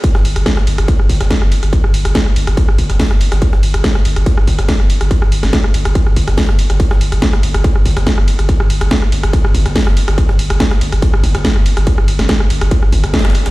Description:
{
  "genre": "driving peak-time techno",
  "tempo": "142 BPM",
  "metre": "4/4",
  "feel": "straight",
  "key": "unclear",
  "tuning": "A4 = 439 Hz",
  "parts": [
    { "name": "breakbeat sampler-style drum kit", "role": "drums", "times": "0.0-13.5 s", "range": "hi-hat, ride cymbal, snare drum", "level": "-31 LUFS", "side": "equal", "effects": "high-pass filter on cymbals, high-pass filter on snare, high-pass filter on hats" },
    { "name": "electronic kick drum", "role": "drums", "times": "0.0-13.2 s", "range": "none", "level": "-13 LUFS", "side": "equal", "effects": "distortion" },
    { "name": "techno drum kit", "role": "drums", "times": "0.0-13.5 s", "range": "hi-hat, ride cymbal, rim click, snare drum", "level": "-18 LUFS", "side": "equal", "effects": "none" },
    { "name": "saturated sub bass", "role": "bass", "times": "0.1-13.5 s", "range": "G1", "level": "-16 LUFS", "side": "equal", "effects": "overdrive, sidechain pumping, low-pass filter" }
  ],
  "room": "little or no reverb",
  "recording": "played on a big sound system in a bare room, stone room reverb",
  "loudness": "-11 LUFS",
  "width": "side -19 dB against mid",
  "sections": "0.0-13.5 A section",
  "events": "band accent 13.1",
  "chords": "none"
}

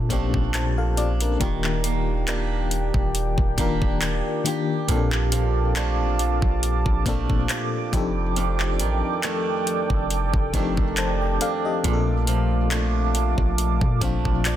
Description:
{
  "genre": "contemporary R&B",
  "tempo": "69 BPM",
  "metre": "4/4",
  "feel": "swing 54% on 16ths",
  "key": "Bb major",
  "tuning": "A4 = 443 Hz",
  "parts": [
    { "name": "FM electric piano with tremolo", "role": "accompaniment", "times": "0.0-14.6 s", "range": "Bb2 to A5", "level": "-27 LUFS", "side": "left 5 dB", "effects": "none" },
    { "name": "picked swing-style acoustic guitar", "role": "arpeggios", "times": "0.0-14.6 s", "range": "F2 to G4", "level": "-30 LUFS", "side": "right 9 dB", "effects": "ping-pong delay" },
    { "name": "long sustained 808-style bass", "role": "bass", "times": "0.0-14.6 s", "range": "Eb1 to Bb2", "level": "-24 LUFS", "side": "equal", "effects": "none" },
    { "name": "smooth R&B drum kit", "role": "drums", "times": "0.1-14.6 s", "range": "handclaps, hi-hat, kick drum", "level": "-26 LUFS", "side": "equal", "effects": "none" },
    { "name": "warm analog pad", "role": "sustained chords", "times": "1.4-14.6 s", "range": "A3 to D6", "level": "-29 LUFS", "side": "right 2 dB", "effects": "chorus, sidechain pumping" }
  ],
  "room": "digital ambience",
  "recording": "dense, heavily limited modern master",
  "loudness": "-20 LUFS",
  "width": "side -11 dB against mid",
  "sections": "0.0-14.6 A section",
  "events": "none",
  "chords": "0.0 Bbmaj7; 1.4 Ebmaj7; 4.9 Bbmaj7; 7.9 F13; 11.8 Bbmaj7"
}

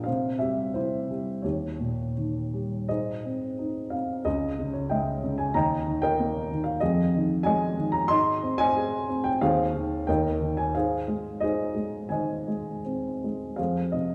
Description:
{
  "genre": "classical, lyrical solo piano",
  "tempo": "77-96 BPM",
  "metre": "4/4",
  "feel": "rubato",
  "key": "Ab major",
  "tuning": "A4 = 440 Hz",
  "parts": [
    { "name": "dark baby grand piano", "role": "solo", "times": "0.0-14.1 s", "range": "Db2 to C6", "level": "-27 LUFS", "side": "equal", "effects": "none" }
  ],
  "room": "wet scoring stage reverb, RT60 1.6 s",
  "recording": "recorded in a church or concert hall",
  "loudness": "-27 LUFS",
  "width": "mono",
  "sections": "0.0-2.9 A section; 2.9-13.6 B section",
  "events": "none",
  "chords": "0.1 C; 1.4 Eb7; 2.9 Ab; 4.2 Dbmadd9; 5.5 Eb; 6.8 Dbadd9/F; 8.1 Ab; 9.4 Ab/Eb; 10.1 Eb; 10.7 Ab; 13.6 Fm"
}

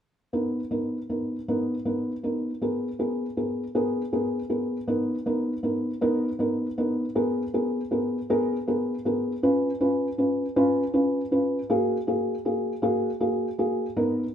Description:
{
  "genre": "pop",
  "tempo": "53 BPM (dotted quarters)",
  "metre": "6/8",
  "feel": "straight",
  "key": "unclear",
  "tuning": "A4 = 440 Hz",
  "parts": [
    { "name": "felt-muted upright piano", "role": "accompaniment", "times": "0.3-14.2 s", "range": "A#3 to B4", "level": "-24 LUFS", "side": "equal", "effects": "none" }
  ],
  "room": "wet studio reverb, RT60 0.9 s",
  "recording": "band playing live in one room",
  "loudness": "-24 LUFS",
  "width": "side -9 dB against mid",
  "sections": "0.3-4.9 A section; 4.9-14.3 B section",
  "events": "none",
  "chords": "0.3 Bmaj7; 2.6 G#madd9; 4.9 Bmaj7; 7.2 G#madd9; 9.4 C#7; 11.7 F#add9"
}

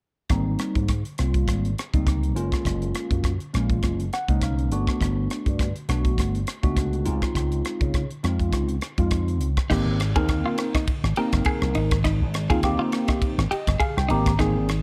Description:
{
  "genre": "electric jazz fusion",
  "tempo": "102 BPM",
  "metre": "4/4",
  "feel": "swing 55% on 16ths",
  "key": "Ab major from 9.7 s",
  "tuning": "A4 = 440 Hz",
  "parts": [
    { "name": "tine electric piano", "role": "accompaniment", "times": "0.3-14.7 s", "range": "G3 to Bb5", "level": "-29 LUFS", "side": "equal", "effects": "phaser" },
    { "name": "slap bass with an envelope filter", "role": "bass", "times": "0.3-14.8 s", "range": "Gb1 to Db3", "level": "-27 LUFS", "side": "equal", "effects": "none" },
    { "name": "crisp fusion drum kit", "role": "drums", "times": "0.3-14.8 s", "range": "crash cymbal, hi-hat, kick drum, ride cymbal, rim click", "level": "-29 LUFS", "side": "equal", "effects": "none" },
    { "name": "clean electric guitar", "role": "stabs", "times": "9.7-14.5 s", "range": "Eb4 to Ab4", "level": "-31 LUFS", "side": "equal", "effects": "lush chorus" }
  ],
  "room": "small room reverb",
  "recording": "none",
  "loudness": "-24 LUFS",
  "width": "mono",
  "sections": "0.3-9.7 A section; 9.7-14.8 B section",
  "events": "tine electric piano fill 3.8-5.0, 13.2-14.4",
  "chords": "0.3 Abmaj9; 2.4 Gbmaj9; 4.7 Gmaj9; 7.1 Dbmaj9; 9.7 Abmaj9"
}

